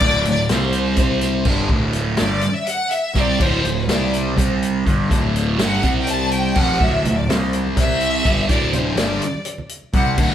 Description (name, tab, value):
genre	psychedelic rock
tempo	248 BPM (eighths)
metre	7/8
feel	straight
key	D mixolydian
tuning	A4 = 440 Hz
part	clear symphonic string section	sustained chords	0.0-10.3 s	B4 to A5	-22 LUFS	left 1 dB	none
part	thick fuzz guitar	riff	0.0-10.3 s	D2 to C4	-20 LUFS	equal	distortion, phaser
part	fuzz picked electric bass	bass	0.0-10.3 s	D1 to C2	-24 LUFS	equal	overdrive
part	vintage drum kit	drums	0.0-10.3 s	crash cymbal, hi-hat, kick drum, snare drum	-21 LUFS	equal	none
part	congas	percussion	6.8-10.3 s	none	-30 LUFS	right 3 dB	none
room	moderate stone room reverb, RT60 1.2 s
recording	band playing live in one room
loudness	-16 LUFS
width	side -10 dB against mid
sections	0.0-10.3 A section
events	string section solo 0.0-10.3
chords	0.5 C5; 1.5 D5; 3.9 C5; 4.9 D5; 5.8 C5; 6.6 D5; 7.3 C5; 8.3 D